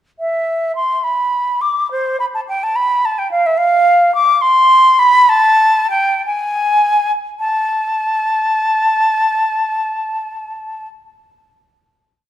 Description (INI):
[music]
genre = classical, baroque-style fantasia for unaccompanied flute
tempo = 50-74 BPM (dotted quarters)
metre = 6/8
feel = rubato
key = A minor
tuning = A4 = 440 Hz
[part]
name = silver concert flute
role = solo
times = 0.2-10.9 s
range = C5 to D6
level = -12 LUFS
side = equal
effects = none
[sound]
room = moderate recital hall reverb, RT60 1.8 s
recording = none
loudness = -12 LUFS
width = side -11 dB against mid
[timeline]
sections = 0.2-7.4 A section; 7.4-11.7 final note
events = slowing down 2.8-7.4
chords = none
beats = | 0.19 1.04 | 1.92 2.76 | 3.58 4.42 | 5.29 6.26 | 7.38 8.44 | 9.52 10.60